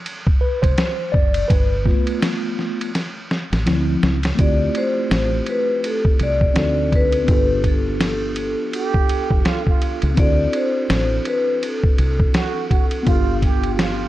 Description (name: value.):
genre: hip hop, jazz-hop.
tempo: 83 BPM.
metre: 4/4.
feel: swing 60% on 16ths.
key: D dorian.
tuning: A4 = 440 Hz.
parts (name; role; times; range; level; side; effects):
lo-fi sampler-style drum kit; drums; 0.1-14.0 s; hi-hat, kick drum, ride cymbal, snare drum; -19 LUFS; equal; none.
mellow tine electric piano; accompaniment; 0.4-14.1 s; F3 to D5; -24 LUFS; equal; medium stereo tremolo.
deep dub fingered electric bass; bass; 0.6-14.1 s; F1 to D2; -22 LUFS; equal; none.
vibraphone with medium mallets; melody; 4.4-14.1 s; A4 to D5; -23 LUFS; left 2 dB; none.
trombone with plunger mute; second line; 8.7-14.1 s; F4 to G4; -26 LUFS; right 9 dB; analog delay.
room: little or no reverb.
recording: dark, warm production.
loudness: -16 LUFS.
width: side -15 dB against mid.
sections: 0.0-4.4 A section; 4.4-14.1 B section.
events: tine electric piano solo 0.0-4.4; drum fill 2.9-4.4.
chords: 0.0 D7; 1.5 G9; 3.7 Dm9; 4.4 Dm11; 6.6 D7b9; 7.3 G9; 10.2 D7; 13.1 G9.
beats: 0.05 0.78 | 1.50 2.22 2.94 3.67 | 4.39 5.11 5.84 6.56 | 7.28 8.01 8.73 9.45 | 10.17 10.90 11.62 12.34 | 13.06 13.79.